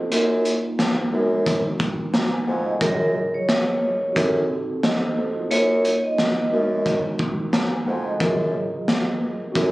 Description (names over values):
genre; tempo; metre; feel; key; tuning
hip hop, boom-bap hip-hop; 89 BPM; 4/4; swing 57% on 16ths; F# major; A4 = 440 Hz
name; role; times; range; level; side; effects
mellow tine electric piano; accompaniment; 0.0-9.7 s; F#2 to A#5; -25 LUFS; equal; medium stereo tremolo, high-pass filter, low-pass filter
mellow bassoon; bass; 0.1-9.7 s; E#2 to F#2; -23 LUFS; equal; none
crunchy breakbeat drum kit; drums; 0.1-9.7 s; hi-hat, kick drum, snare drum; -23 LUFS; equal; none
vibraphone with medium hard mallets; melody; 2.8-7.0 s; A#4 to D#5; -23 LUFS; equal; high-pass filter, low-pass filter, slapback echo
room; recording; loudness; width
light reverb; recorded on a phone in the room, club reverb; -19 LUFS; side -19 dB against mid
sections
0.0-9.7 A section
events
none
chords
0.1 A#sus4/F#; 1.1 G#m7/F#; 2.8 F#maj7; 4.2 F#dim7; 5.5 A#sus4/F#; 6.5 G#m7/F#; 8.2 F#maj7